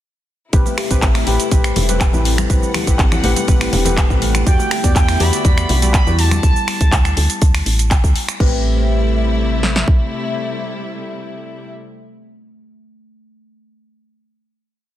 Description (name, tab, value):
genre	afro house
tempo	122 BPM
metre	4/4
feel	straight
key	A dorian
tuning	A4 = 440 Hz
part	warm studio string section	sustained chords	0.5-11.7 s	C3 to F#5	-26 LUFS	left 2 dB	sidechain pumping
part	deep mellow chord stab	stabs	0.5-11.7 s	C4 to D5	-24 LUFS	left 3 dB	chorus, sidechain pumping, digital delay
part	woody FM bass	bass	0.5-9.8 s	E1 to E2	-18 LUFS	equal	sidechain pumping
part	house drum kit	drums	0.5-10.0 s	kick drum, snare drum	-14 LUFS	equal	none
part	house drum kit	drums	0.5-8.5 s	crash cymbal, finger snaps, handclaps, hi-hat, shaker	-21 LUFS	equal	soft clipping on snare
part	buzzing kalimba	arpeggios	0.7-8.6 s	G3 to A4	-25 LUFS	equal	sidechain pumping, digital delay
part	congas	percussion	0.7-6.4 s	none	-26 LUFS	left 2 dB	none
part	expressive portamento lead	melody	4.5-7.9 s	G5 to B5	-23 LUFS	right 2 dB	lush chorus, digital delay
room	digital ambience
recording	dense, heavily limited modern master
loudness	-13 LUFS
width	side -13 dB against mid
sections	0.5-8.4 drop; 8.4-12.3 final chord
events	drop 0.5-8.4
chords	0.5 Am7; 4.5 Em7; 6.4 D5; 8.4 Am7